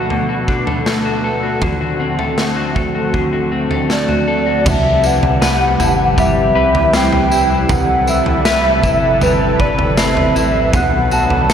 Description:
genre	dream pop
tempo	79 BPM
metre	4/4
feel	straight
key	C lydian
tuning	A4 = 439 Hz
part	lush unison pad	sustained chords	0.0-11.5 s	C3 to B4	-20 LUFS	equal	chorus, phaser
part	electric guitar at the edge of break-up	arpeggios	0.0-11.5 s	B2 to B4	-19 LUFS	left 3 dB	analog chorus, tape echo
part	raw garage drum kit	drums	0.1-11.5 s	crash cymbal, kick drum, snare drum, tambourine, toms	-19 LUFS	right 1 dB	none
part	warbly nostalgic lead	melody	3.9-11.5 s	B4 to A5	-16 LUFS	right 1 dB	chorus, tape echo, slapback echo
part	chorused synth bass	bass	4.7-11.5 s	G1 to C2	-21 LUFS	equal	none
part	celesta	texture	4.7-11.5 s	A5 to F#6	-28 LUFS	right 2 dB	tape echo
room	wet concert hall reverb, RT60 2.2 s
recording	big arena sound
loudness	-12 LUFS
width	side -8 dB against mid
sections	0.0-4.7 A section; 4.7-11.5 B section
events	none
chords	0.0 Bm7; 1.6 D7; 4.7 Cmaj7; 10.7 Bm7

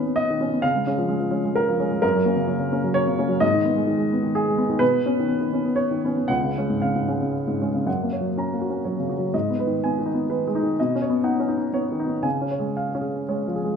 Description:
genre	neoclassical minimalist piano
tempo	111-131 BPM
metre	3/4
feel	rubato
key	F# major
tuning	A4 = 443 Hz
part	warm upright piano	solo	0.0-13.8 s	C#2 to A#5	-20 LUFS	equal	none
room	moderate scoring stage reverb, RT60 1.8 s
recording	minimal, uncompressed stereo recording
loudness	-20 LUFS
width	side -6 dB against mid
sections	0.0-7.9 A section; 7.9-13.8 B section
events	none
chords	0.0 Badd9; 0.6 C#; 2.0 F#; 3.4 G#m; 4.8 Badd9; 6.3 C#; 7.9 F#; 9.3 G#m; 10.8 Badd9; 12.2 C#

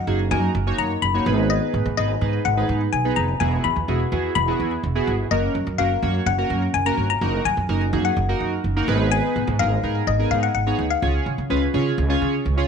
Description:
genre	dance-pop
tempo	126 BPM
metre	4/4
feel	straight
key	unclear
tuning	A4 = 440 Hz
part	mallet-like synth pluck	melody	0.0-12.4 s	Eb5 to Cb6	-24 LUFS	left 9 dB	chorus, tape echo
part	upright bass	bass	0.0-12.6 s	E1 to Db3	-22 LUFS	right 2 dB	none
part	chorused polysynth	accompaniment	0.1-12.7 s	Bb3 to Db5	-24 LUFS	right 1 dB	none
room	moderate echo chamber reverb, RT60 1.4 s, small room ambience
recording	faint mains hum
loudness	-19 LUFS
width	side -6 dB against mid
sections	0.0-12.7 A section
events	none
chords	0.0 Ebm/Gb; 1.3 Abm; 3.4 Eadd9; 5.3 Gb; 7.2 Ebm/Gb; 8.9 Abm; 11.0 Db

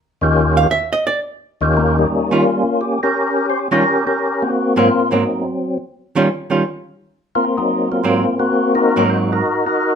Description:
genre	jazz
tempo	172 BPM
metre	4/4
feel	swing 64% on 8ths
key	unclear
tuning	A4 = 440 Hz
part	percussive tonewheel organ	melody	0.2-10.0 s	Eb2 to C5	-15 LUFS	left 1 dB	slow rotary speaker, overdrive, chorus vibrato
part	archtop guitar, miked and amplified	accompaniment	0.6-9.4 s	Ab2 to F5	-17 LUFS	right 3 dB	none
room	moderate club reverb, RT60 0.8 s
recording	minimal, uncompressed stereo recording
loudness	-15 LUFS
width	side -7 dB against mid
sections	0.0-1.7 A section; 1.7-10.0 B section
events	hollow-body jazz guitar solo 0.0-1.7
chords	0.0 Eb9; 4.5 Ab9; 5.9 Eb9; 7.3 Ab9

